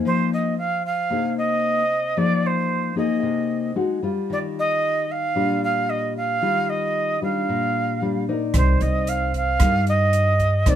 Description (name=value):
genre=bossa nova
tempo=113 BPM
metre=4/4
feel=straight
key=unclear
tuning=A4 = 440 Hz
part: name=nylon-string guitar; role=accompaniment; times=0.0-10.8 s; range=Bb2 to D5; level=-24 LUFS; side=left 4 dB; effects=none
part: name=jazz flute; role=melody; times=0.1-10.8 s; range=C5 to F5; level=-22 LUFS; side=right 3 dB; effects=none
part: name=upright bass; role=bass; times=8.5-10.8 s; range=C2 to G2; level=-20 LUFS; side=right 1 dB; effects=none
part: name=open jazz drum kit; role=drums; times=8.5-10.8 s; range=hi-hat, kick drum, rim click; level=-23 LUFS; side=right 1 dB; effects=none
room=light reverb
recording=minimal, uncompressed stereo recording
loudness=-19 LUFS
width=side -10 dB against mid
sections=0.0-10.8 A section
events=none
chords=0.0 Fm7; 3.8 Fm9; 4.3 Ebmaj9; 8.5 Cm9